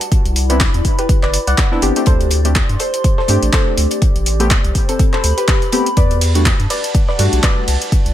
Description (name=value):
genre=deep house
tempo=123 BPM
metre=4/4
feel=swing 57% on 16ths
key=E minor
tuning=A4 = 440 Hz
part: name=deep house drum kit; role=drums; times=0.0-8.1 s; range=handclaps, hi-hat, ride cymbal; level=-20 LUFS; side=equal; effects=none
part: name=deep reggae drum kit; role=drums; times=0.0-8.1 s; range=hi-hat, snare drum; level=-31 LUFS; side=left 6 dB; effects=none
part: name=warbly tape-like pad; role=texture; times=0.0-8.1 s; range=E4 to C6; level=-25 LUFS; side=left 1 dB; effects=chorus, built-in reverb, sidechain pumping
part: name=electronic kick drum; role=drums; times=0.1-8.0 s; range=none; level=-15 LUFS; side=equal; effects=none
part: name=round analog bass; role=bass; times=0.3-8.1 s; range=G1 to G2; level=-16 LUFS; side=equal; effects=sidechain pumping
part: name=warm analog keys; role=stabs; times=0.5-7.7 s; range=G3 to G4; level=-21 LUFS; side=left 1 dB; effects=chorus, sidechain pumping, dub echo
part: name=soft round pluck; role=melody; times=1.0-7.7 s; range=C4 to F#5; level=-22 LUFS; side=left 1 dB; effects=lush chorus, dub echo
room=little or no reverb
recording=none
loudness=-12 LUFS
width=side -12 dB against mid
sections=0.0-8.1 A section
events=none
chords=0.0 Cmaj9; 2.1 D7sus4; 4.0 Am9; 6.0 Em11